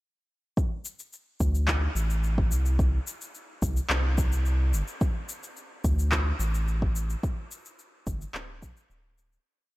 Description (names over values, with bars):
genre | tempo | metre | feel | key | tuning
sunset chillout | 108 BPM | 4/4 | straight | unclear | A4 = 440 Hz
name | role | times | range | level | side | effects
electronic kick drum | drums | 0.6-8.7 s | none | -28 LUFS | equal | overdrive
electronic shaker and handclaps | drums | 0.6-9.4 s | none | -33 LUFS | equal | overdrive
round analog bass | bass | 1.4-9.4 s | D1 to D2 | -25 LUFS | equal | none
room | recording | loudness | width
little or no reverb | none | -25 LUFS | side -19 dB against mid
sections
0.6-9.5 groove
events
fade-out 6.5-9.5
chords
none